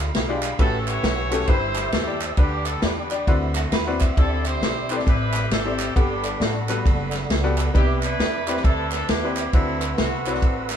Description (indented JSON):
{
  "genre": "uptempo gospel",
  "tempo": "134 BPM",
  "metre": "4/4",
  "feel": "swing 64% on 8ths",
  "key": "G major",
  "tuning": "A4 = 439 Hz",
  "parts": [
    { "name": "warm horn section", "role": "melody", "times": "0.0-10.8 s", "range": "A3 to C#5", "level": "-28 LUFS", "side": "equal", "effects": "none" },
    { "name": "clear grand piano", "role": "accompaniment", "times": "0.0-10.8 s", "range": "G2 to F#5", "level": "-27 LUFS", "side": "left 4 dB", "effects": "none" },
    { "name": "mellow tonewheel organ", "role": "sustained chords", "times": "0.0-10.8 s", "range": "C4 to E6", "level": "-32 LUFS", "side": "right 3 dB", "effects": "fast rotary speaker, chorus vibrato" },
    { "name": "upright bass", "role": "bass", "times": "0.0-10.8 s", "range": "F#1 to E2", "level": "-27 LUFS", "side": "equal", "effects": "none" },
    { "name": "swinging big-band drum kit", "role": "drums", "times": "0.0-10.8 s", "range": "kick drum, ride cymbal, snare drum", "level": "-23 LUFS", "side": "equal", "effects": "none" },
    { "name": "group handclap", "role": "percussion", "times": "0.4-10.8 s", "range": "none", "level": "-32 LUFS", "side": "right 5 dB", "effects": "none" },
    { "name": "semi-hollow electric guitar", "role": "second line", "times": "3.6-4.4 s", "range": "F#4 to E5", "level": "-32 LUFS", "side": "right 5 dB", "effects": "none" }
  ],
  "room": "moderate studio reverb, RT60 0.5 s",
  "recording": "band playing live in one room",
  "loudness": "-19 LUFS",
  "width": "side -8 dB against mid",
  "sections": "0.0-10.8 A section",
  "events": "none",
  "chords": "0.0 G7b9; 0.6 A13; 1.5 C/G; 2.4 G/D; 3.3 D13; 4.2 D9sus4; 6.0 Gmaj9; 7.7 Cmaj9; 9.5 D13"
}